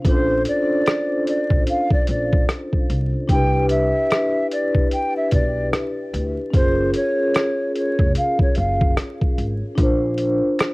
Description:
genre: lo-fi hip hop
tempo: 74 BPM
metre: 4/4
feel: swing 60% on 16ths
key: unclear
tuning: A4 = 440 Hz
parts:
  - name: vibraphone with soft mallets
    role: accompaniment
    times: 0.0-10.7 s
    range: Db4 to C5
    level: -22 LUFS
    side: left 1 dB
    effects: cassette tape
  - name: upright bass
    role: bass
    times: 0.0-10.4 s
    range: F1 to D2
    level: -24 LUFS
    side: equal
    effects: none
  - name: boom bap sampler-style drum kit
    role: drums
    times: 0.0-10.7 s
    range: hi-hat, kick drum, rim click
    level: -19 LUFS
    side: equal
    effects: cassette tape
  - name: breathy hollow jazz flute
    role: melody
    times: 0.1-8.9 s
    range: C5 to G5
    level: -23 LUFS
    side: equal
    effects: cassette tape, analog delay
  - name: finger snaps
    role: percussion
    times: 10.6-10.7 s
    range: none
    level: -36 LUFS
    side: right 4 dB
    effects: none
room: light reverb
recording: home recording on cassette, vinyl crackle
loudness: -17 LUFS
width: side -23 dB against mid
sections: 0.0-10.7 A section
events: none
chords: 0.0 Bbmaj9; 3.3 Cmaj9; 6.5 Gbmaj9; 9.8 Bbadd9

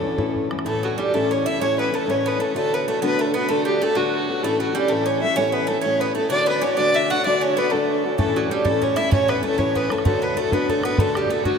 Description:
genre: celtic folk, Celtic slide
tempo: 128 BPM (dotted quarters)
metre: 12/8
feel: straight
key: A mixolydian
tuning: A4 = 440 Hz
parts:
  - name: dark fiddle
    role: melody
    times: 0.0-11.6 s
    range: F#4 to F#5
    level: -21 LUFS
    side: equal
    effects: none
  - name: Irish bouzouki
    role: second line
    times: 0.0-11.6 s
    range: F#3 to F#4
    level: -26 LUFS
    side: right 4 dB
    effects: none
  - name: fingerpicked steel-string acoustic guitar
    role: accompaniment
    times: 0.0-11.6 s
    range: A2 to A4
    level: -24 LUFS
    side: left 3 dB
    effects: none
  - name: bodhran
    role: percussion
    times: 0.2-0.7, 8.2-11.5 s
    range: none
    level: -25 LUFS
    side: right 1 dB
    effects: none
room: wet cathedral reverb, RT60 5.7 s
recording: in a vast, echoing space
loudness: -18 LUFS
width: side -6 dB against mid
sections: 0.7-11.6 A section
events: none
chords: 0.0 A; 2.5 D; 4.4 A; 6.3 D; 8.2 A; 10.1 D

